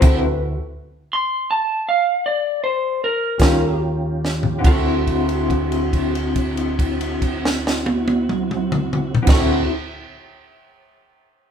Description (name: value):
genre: slow blues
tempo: 47-57 BPM (dotted quarters)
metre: 12/8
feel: straight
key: D mixolydian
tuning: A4 = 439 Hz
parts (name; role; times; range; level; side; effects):
- electric slide guitar; melody; 0.0-9.6 s; F#4 to C6; -22 LUFS; equal; none
- dark upright piano; accompaniment; 0.0-9.7 s; C4 to Bb4; -28 LUFS; right 4 dB; none
- electric guitar through a small old amp; accompaniment; 0.0-9.7 s; D3 to F4; -24 LUFS; left 3 dB; tremolo
- mellow tonewheel organ; sustained chords; 0.0-9.6 s; C4 to G4; -29 LUFS; right 4 dB; slow rotary speaker, chorus vibrato
- fingered electric bass; bass; 0.0-9.6 s; D2 to Eb2; -26 LUFS; equal; none
- compact cocktail drum kit; drums; 0.0-9.5 s; crash cymbal, hi-hat, kick drum, snare drum, toms; -19 LUFS; equal; none
room: moderate large studio reverb, RT60 1.1 s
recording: band playing live in one room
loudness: -17 LUFS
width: side -8 dB against mid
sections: 0.0-4.6 A section; 4.6-9.8 B section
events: slowing down 0.0-4.6; stop 0.0-3.4; drum fill 4.2-4.6; held note 4.6-9.3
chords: 0.0 D9; 3.4 Eb9; 4.6 D9